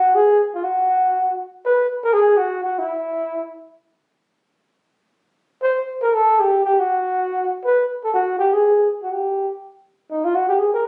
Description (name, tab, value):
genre	jazz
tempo	free time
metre	none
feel	none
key	unclear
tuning	A4 = 439 Hz
part	breathy flugelhorn	solo	0.0-3.5, 5.6-10.9 s	D#4 to C5	-19 LUFS	equal	none
room	moderate studio reverb, RT60 0.7 s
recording	recorded on a phone in the room, studio reverb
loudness	-19 LUFS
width	mono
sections	0.0-1.6 A section; 1.6-9.6 B section; 9.6-10.9 C section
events	flugelhorn solo 9.6-10.9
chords	none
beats	free time